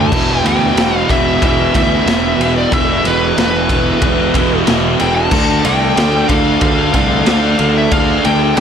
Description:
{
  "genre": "hard rock",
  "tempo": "92 BPM",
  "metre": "4/4",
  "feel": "straight",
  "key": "unclear",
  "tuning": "A4 = 443 Hz",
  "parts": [
    { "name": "dark smooth lead guitar", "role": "melody", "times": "0.0-8.6 s", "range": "B4 to A5", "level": "-18 LUFS", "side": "equal", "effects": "overdrive, digital delay" },
    { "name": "tonewheel organ", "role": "sustained chords", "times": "0.0-8.6 s", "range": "D4 to G5", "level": "-28 LUFS", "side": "equal", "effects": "none" },
    { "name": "distorted electric guitar", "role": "riff", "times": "0.0-8.6 s", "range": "E2 to D4", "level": "-19 LUFS", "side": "left 14 dB", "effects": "overdrive" },
    { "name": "distorted electric guitar", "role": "riff", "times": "0.0-8.6 s", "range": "E2 to D4", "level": "-20 LUFS", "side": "equal", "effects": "distortion" },
    { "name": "overdriven electric guitar", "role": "riff", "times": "0.0-8.6 s", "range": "E2 to D4", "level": "-19 LUFS", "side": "right 12 dB", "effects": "none" },
    { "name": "fuzz picked electric bass", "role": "bass", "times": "0.0-8.6 s", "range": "E1 to D2", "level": "-19 LUFS", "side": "equal", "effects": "overdrive" },
    { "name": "raw garage drum kit", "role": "drums", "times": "0.1-8.6 s", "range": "crash cymbal, kick drum, ride cymbal, snare drum", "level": "-17 LUFS", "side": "equal", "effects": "none" }
  ],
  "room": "light reverb",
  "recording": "none",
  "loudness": "-11 LUFS",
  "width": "side -8 dB against mid",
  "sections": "0.0-8.6 A section",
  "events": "none",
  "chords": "0.1 Em; 5.3 Dm"
}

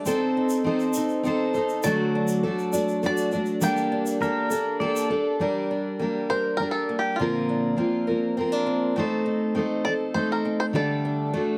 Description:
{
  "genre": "acoustic folk duo or small band",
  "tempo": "101 BPM",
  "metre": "3/4",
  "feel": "straight",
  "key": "G minor",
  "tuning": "A4 = 436 Hz",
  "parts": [
    { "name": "bluegrass banjo", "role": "melody", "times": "0.0-11.3 s", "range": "F4 to A5", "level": "-31 LUFS", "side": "equal", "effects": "none" },
    { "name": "picked steel-string acoustic guitar", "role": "accompaniment", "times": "0.0-11.6 s", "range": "Bb2 to D5", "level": "-28 LUFS", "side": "equal", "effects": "none" },
    { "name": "picked acoustic archtop guitar", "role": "arpeggios", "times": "0.0-11.6 s", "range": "F3 to Bb4", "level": "-30 LUFS", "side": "equal", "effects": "none" },
    { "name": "tube shaker", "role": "percussion", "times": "0.1-5.1 s", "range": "none", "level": "-41 LUFS", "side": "equal", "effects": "none" },
    { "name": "pedal steel guitar", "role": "second line", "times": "4.2-5.4 s", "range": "Bb4 to D5", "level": "-30 LUFS", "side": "equal", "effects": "none" }
  ],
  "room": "light reverb",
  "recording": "close, detailed microphones",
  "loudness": "-25 LUFS",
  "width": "mono",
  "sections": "0.0-5.4 A section; 5.4-11.6 B section",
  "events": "five-string banjo solo 5.4-11.6",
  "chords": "0.1 Adim/C; 1.8 D; 3.6 Gmadd9; 5.4 Gm; 7.2 Bbadd9; 9.0 Adim; 10.7 Dsus4"
}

